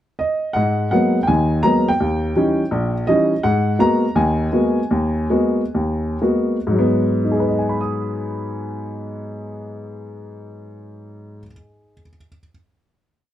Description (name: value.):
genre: solo jazz.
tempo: 116-170 BPM.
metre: 4/4.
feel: swing 64% on 8ths, rubato.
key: G# minor.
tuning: A4 = 440 Hz.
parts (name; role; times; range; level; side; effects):
warm upright piano; solo; 0.2-12.5 s; A#1 to D#6; -17 LUFS; equal; none.
room: little or no reverb.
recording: close, detailed microphones.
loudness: -16 LUFS.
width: side -12 dB against mid.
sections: 0.0-0.6 pickup bar; 0.6-6.7 A section; 6.7-10.8 final chord.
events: slowing down 3.4-6.7.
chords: 0.0 N.C.; 0.6 G#m9; 2.0 D#7b9; 3.4 G#m9; 6.7 G#m7.